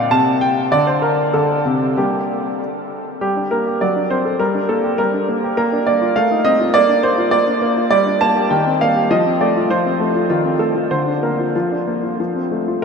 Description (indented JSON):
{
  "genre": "classical-period piano sonatina",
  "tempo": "93-104 BPM",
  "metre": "2/4",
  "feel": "rubato",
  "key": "G minor",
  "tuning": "A4 = 441 Hz",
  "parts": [
    { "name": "clear grand piano", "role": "solo", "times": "0.0-12.8 s", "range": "Bb2 to A5", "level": "-15 LUFS", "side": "equal", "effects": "none" }
  ],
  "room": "wet huge ambient reverb, RT60 8.3 s",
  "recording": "in a vast, echoing space",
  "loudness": "-15 LUFS",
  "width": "side -5 dB against mid",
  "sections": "0.0-3.2 A section; 3.2-12.8 B section",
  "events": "none",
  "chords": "0.0 N.C.; 1.3 D5; 2.0 Gm; 3.8 D7/F#; 4.4 Gm; 5.6 Bb; 6.2 F7/A; 6.7 Bb; 7.9 Gm; 8.5 Cm7/Eb; 9.1 F; 10.3 F7/Eb; 10.9 Bb/D; 11.5 Bb/F; 12.2 F"
}